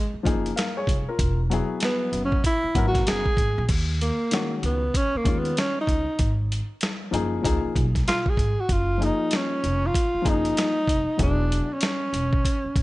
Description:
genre	hip hop, jazz-hop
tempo	96 BPM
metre	4/4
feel	swing 64% on 16ths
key	Eb minor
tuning	A4 = 440 Hz
part	breathy tenor saxophone	melody	0.0-12.8 s	Ab3 to Ab4	-25 LUFS	equal	none
part	upright bass	bass	0.1-12.8 s	E1 to Eb2	-26 LUFS	equal	none
part	dark baby grand piano	accompaniment	0.2-11.7 s	Eb3 to F5	-28 LUFS	left 4 dB	none
part	dusty soul sampler-style drum kit	drums	0.3-12.8 s	crash cymbal, hi-hat, kick drum, snare drum	-25 LUFS	equal	none
room	studio reverb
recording	nothing above 10.7 kHz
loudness	-21 LUFS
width	side -19 dB against mid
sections	0.0-3.7 A section; 3.7-12.8 A section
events	tenor saxophone solo 0.0-3.7, 3.7-12.8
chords	0.0 Gbmaj7; 1.2 Eadd9; 3.7 Ebm11; 6.2 Ab5; 7.4 Db7; 8.7 Gbmaj7; 11.2 Eadd9

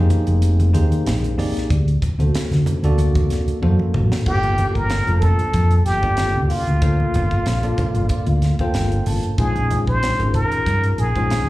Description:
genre	electric jazz fusion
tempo	94 BPM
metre	4/4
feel	swing 53% on 16ths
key	G minor from 4.3 s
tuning	A4 = 439 Hz
part	tine electric piano	accompaniment	0.0-11.5 s	Ab3 to A5	-25 LUFS	equal	medium stereo tremolo, slapback echo
part	hollow-body short-scale fingered electric bass	bass	0.0-11.5 s	F1 to D3	-18 LUFS	equal	none
part	crisp fusion drum kit	drums	0.1-11.5 s	crash cymbal, hi-hat, kick drum, snare drum, toms	-25 LUFS	equal	none
part	congas	percussion	0.1-11.3 s	none	-26 LUFS	right 1 dB	none
part	trumpet with plunger mute	melody	4.3-11.5 s	F4 to C5	-22 LUFS	equal	slapback echo
room	little or no reverb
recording	live gig heard through the venue's PA, club reverb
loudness	-16 LUFS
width	side -17 dB against mid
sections	0.0-4.3 A section; 4.3-11.5 B section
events	drum fill 3.6-4.3; tine electric piano fill 7.5-9.4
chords	0.0 Fm11; 1.7 D7b13; 4.3 Gm11; 9.4 Bbm11

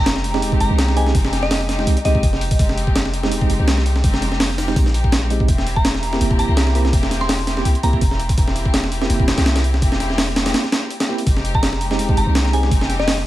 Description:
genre	drum and bass, jungle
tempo	166 BPM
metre	4/4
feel	swing 54% on 16ths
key	F minor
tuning	A4 = 440 Hz
part	soft synth bell	melody	0.0-2.6, 5.8-8.2, 11.5-13.3 s	Eb5 to C6	-26 LUFS	equal	chorus, dub echo
part	rich studio string section	sustained chords	0.0-13.2 s	Ab3 to G4	-27 LUFS	left 2 dB	none
part	warm 808-style bass	bass	0.0-13.3 s	Eb1 to C2	-20 LUFS	equal	none
part	breakbeat sampler-style drum kit	drums	0.1-13.3 s	hi-hat, kick drum, snare drum	-18 LUFS	equal	small room ambience
part	mellow tine electric piano	stabs	0.3-12.7 s	Ab3 to G4	-26 LUFS	right 3 dB	overdrive, medium stereo tremolo, dub echo
room	little or no reverb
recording	vinyl crackle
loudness	-15 LUFS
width	side -15 dB against mid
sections	0.0-13.3 A section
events	break 10.5-11.3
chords	0.0 Fm7; 5.5 C7/E; 11.3 Fm7

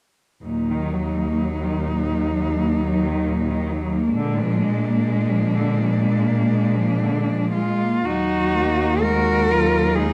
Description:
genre	classical, lyrical piece for cello ensemble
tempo	54-68 BPM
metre	4/4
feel	rubato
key	Eb minor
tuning	A4 = 439 Hz
part	rich cello	accompaniment	0.4-10.1 s	Gb3 to Bb3	-28 LUFS	equal	none
part	rich cello	bass	0.4-10.1 s	Eb2 to Bb2	-26 LUFS	equal	none
part	rich cello	melody	0.5-10.1 s	D4 to Bb4	-27 LUFS	equal	none
part	rich cello	second line	0.5-10.1 s	Bb2 to Gb4	-26 LUFS	equal	none
room	moderate scoring stage reverb, RT60 1.6 s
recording	dark, warm production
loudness	-21 LUFS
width	mono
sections	0.4-8.1 A section; 8.1-10.1 B section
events	none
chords	0.4 Ebm; 4.1 Bb7; 8.1 Ebm

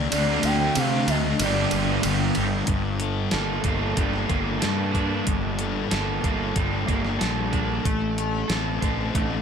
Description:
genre	rock, shoegaze and dream pop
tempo	93 BPM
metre	4/4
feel	straight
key	G minor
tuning	A4 = 440 Hz
part	cranked stack guitar	riff	0.0-2.7 s	G2 to D4	-28 LUFS	right 3 dB	overdrive, harmonic tremolo
part	overdriven semi-hollow guitar	riff	0.0-9.4 s	G2 to A4	-28 LUFS	right 12 dB	reverse reverb
part	thick fuzz guitar	riff	0.0-9.4 s	G2 to A4	-28 LUFS	left 11 dB	distortion, lush chorus
part	fuzz fingered electric bass	bass	0.0-9.4 s	G1 to C3	-27 LUFS	equal	overdrive
part	pure breathy sine lead	melody	0.1-2.0 s	D5 to G5	-29 LUFS	left 1 dB	chorus, slapback echo
part	crisp 8-bit digital drum machine	drums	0.1-9.3 s	hi-hat, kick drum, ride cymbal, snare drum	-28 LUFS	equal	none
room	light reverb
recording	none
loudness	-21 LUFS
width	side -7 dB against mid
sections	0.0-2.7 A section; 2.7-9.4 B section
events	kick and snare drop out 0.1-2.7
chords	0.1 D5; 1.4 Gm; 2.7 Gmadd9; 7.9 Adim

